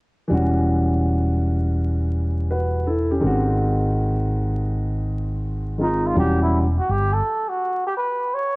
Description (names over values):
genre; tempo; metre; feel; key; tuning
hip hop; 82 BPM; 4/4; swing 65% on 16ths; unclear; A4 = 440 Hz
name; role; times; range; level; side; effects
dark baby grand piano; accompaniment; 0.3-6.6 s; D#3 to B4; -22 LUFS; equal; none
mellow fretless electric bass; bass; 0.3-7.2 s; E1 to G#1; -22 LUFS; equal; none
trumpet with cup mute; melody; 5.8-8.6 s; D#4 to C#5; -22 LUFS; right 1 dB; none
room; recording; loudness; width
light reverb, small room ambience; worn, warbling old tape, cassette tape, vinyl crackle, warbly pitch drift; -19 LUFS; side -25 dB against mid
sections
0.3-6.2 A section; 6.2-8.6 B section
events
none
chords
0.3 Em69; 3.2 G#7; 6.2 Em69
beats
| 0.31 1.04 1.77 2.50 | 3.23 3.96 4.70 5.43 | 6.16 6.89 7.62 8.36